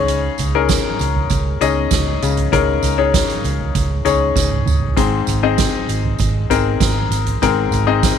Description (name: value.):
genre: piano-driven pop.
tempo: 98 BPM.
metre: 4/4.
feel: straight.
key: unclear.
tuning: A4 = 440 Hz.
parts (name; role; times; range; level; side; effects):
clear baby grand piano; accompaniment; 0.0-8.2 s; Ab2 to Eb5; -18 LUFS; left 9 dB; none.
vintage muted fingered electric bass; bass; 0.0-8.1 s; Ab1 to Db2; -20 LUFS; right 2 dB; none.
soft-mallet drum kit; drums; 0.1-8.2 s; hi-hat, kick drum, snare drum, toms; -20 LUFS; right 4 dB; none.
tambourine; percussion; 0.1-8.2 s; none; -29 LUFS; right 18 dB; none.
room: studio reverb.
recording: 1960s-style stereo with parts hard left and right.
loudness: -14 LUFS.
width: side -8 dB against mid.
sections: 0.0-8.2 A section.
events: drum fill 4.4-5.0.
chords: 0.0 Dbsus2; 5.0 Ab.